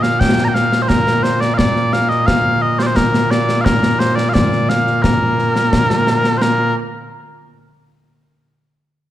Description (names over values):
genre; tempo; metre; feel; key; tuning
scottish traditional, Scottish pipe music; 87 BPM; 2/4; straight; Bb major; A4 = 440 Hz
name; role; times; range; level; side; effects
mellow small bagpipes; melody; 0.0-6.7 s; Bb2 to Bb5; -15 LUFS; equal; none
concert snare drum and concert bass drum; drums; 0.0-6.7 s; none; -17 LUFS; equal; none
room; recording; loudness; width
moderate concert hall reverb, RT60 1.8 s; dark, warm production; -13 LUFS; side -13 dB against mid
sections
0.0-6.4 A section; 6.4-7.8 B section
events
none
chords
none